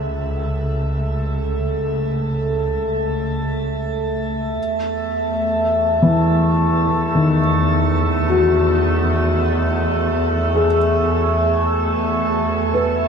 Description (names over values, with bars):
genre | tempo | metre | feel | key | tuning
ambient | free time | none | none | unclear | A4 = 440 Hz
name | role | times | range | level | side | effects
felt-muted upright piano | arpeggios | 0.0-13.1 s | D#3 to B4 | -19 LUFS | left 2 dB | diffuse ambient delay
clear studio double bass section | bass | 0.0-13.1 s | C#2 to E2 | -22 LUFS | right 1 dB | none
overtone-sweeping drone | drone | 0.0-13.1 s | A3 to E5 | -20 LUFS | right 1 dB | chorus, built-in reverb
room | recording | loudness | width
wet shimmer reverb, RT60 9.4 s | none | -16 LUFS | side -6 dB against mid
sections
0.0-13.1 A section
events
fade-in on felt piano 0.0-13.1; fade-in on synth drone 0.0-13.1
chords
0.0 C#m; 4.6 E